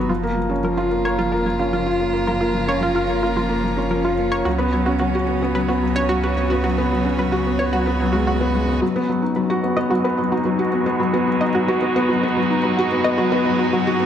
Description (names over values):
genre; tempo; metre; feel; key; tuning
piano and strings electronica; 110 BPM; 4/4; straight; unclear; A4 = 440 Hz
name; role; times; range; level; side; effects
rich string quartet; sustained chords; 0.0-14.1 s; C#3 to B4; -26 LUFS; right 3 dB; low-pass filter
felt-muted upright piano; riff; 0.0-14.1 s; E#3 to F#4; -19 LUFS; left 1 dB; digital delay
dark detuned saw bass; bass; 0.0-8.8 s; F#1 to C#2; -26 LUFS; right 1 dB; none
analog pluck; arpeggios; 0.1-13.8 s; E#4 to D#5; -25 LUFS; right 1 dB; chorus, cassette tape, digital delay
room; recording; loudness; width
moderate scoring stage reverb, RT60 2.0 s, small room ambience; none; -17 LUFS; side -9 dB against mid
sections
0.0-8.8 A section; 8.8-14.1 B section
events
fade-in on string quartet 0.0-8.8; build-up 8.8-14.1; filter sweep on string quartet 8.8-14.1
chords
0.1 F#maj7; 4.5 C#7sus4; 8.8 G#m7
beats
| 0.10 0.64 1.19 1.73 | 2.28 2.82 3.37 3.91 | 4.46 5.00 5.55 6.09 | 6.64 7.18 7.73 8.28 | 8.82 9.37 9.91 10.46 | 11.00 11.55 12.10 12.64 | 13.19 13.73